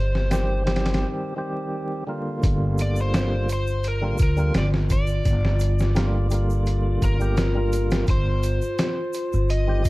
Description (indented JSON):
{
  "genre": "trip hop",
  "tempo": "85 BPM",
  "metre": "4/4",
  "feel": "swing 53% on 16ths",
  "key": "G minor",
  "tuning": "A4 = 441 Hz",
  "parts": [
    { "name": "overdriven slide guitar", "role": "melody", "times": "0.0-9.9 s", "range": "Bb4 to Eb5", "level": "-30 LUFS", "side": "equal", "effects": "tape echo" },
    { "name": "warbly tape-like pad", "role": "sustained chords", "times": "0.0-9.9 s", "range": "G3 to G4", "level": "-32 LUFS", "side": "left 2 dB", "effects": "chorus, built-in reverb" },
    { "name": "upright bass", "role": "bass", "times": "0.0-9.9 s", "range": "G1 to D2", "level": "-22 LUFS", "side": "equal", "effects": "none" },
    { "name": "trip hop sampler-style drum kit", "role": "drums", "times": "0.2-9.9 s", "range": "hi-hat, kick drum, snare drum", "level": "-24 LUFS", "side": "equal", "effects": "none" },
    { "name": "percussive tonewheel organ", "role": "accompaniment", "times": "0.3-9.8 s", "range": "D3 to G4", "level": "-29 LUFS", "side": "equal", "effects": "overdrive, tremolo" },
    { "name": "egg shaker", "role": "percussion", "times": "0.3-9.9 s", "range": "none", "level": "-45 LUFS", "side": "right 7 dB", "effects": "none" }
  ],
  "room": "little or no reverb",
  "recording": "dark, warm production, vinyl crackle",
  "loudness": "-20 LUFS",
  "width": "side -20 dB against mid",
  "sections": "0.0-2.4 A section; 2.4-9.9 B section",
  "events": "break 1.0-2.4",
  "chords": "0.0 Cm; 2.4 Gm7; 8.1 Cm"
}